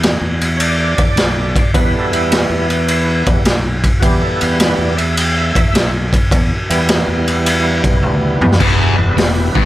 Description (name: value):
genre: blues rock power trio and southern rock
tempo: 105 BPM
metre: 4/4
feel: swing 67% on 8ths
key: E minor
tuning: A4 = 440 Hz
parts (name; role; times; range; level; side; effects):
- fuzz fingered electric bass; bass; 0.0-9.7 s; E1 to E2; -18 LUFS; equal; overdrive
- raw garage drum kit; drums; 0.0-9.6 s; crash cymbal, hi-hat, kick drum, ride cymbal, snare drum, toms; -14 LUFS; equal; none
- overdriven tonewheel organ; sustained chords; 0.6-9.7 s; E3 to G5; -19 LUFS; right 2 dB; slow rotary speaker, chorus vibrato
- sludgy distorted guitar; riff; 8.6-9.7 s; E2 to G2; -16 LUFS; left 2 dB; overdrive
room: light reverb, small room ambience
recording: none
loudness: -12 LUFS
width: side -15 dB against mid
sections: 0.0-8.6 A section; 8.6-9.7 B section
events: tonewheel organ solo 0.0-8.6; drum fill 8.0-8.6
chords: 0.0 Em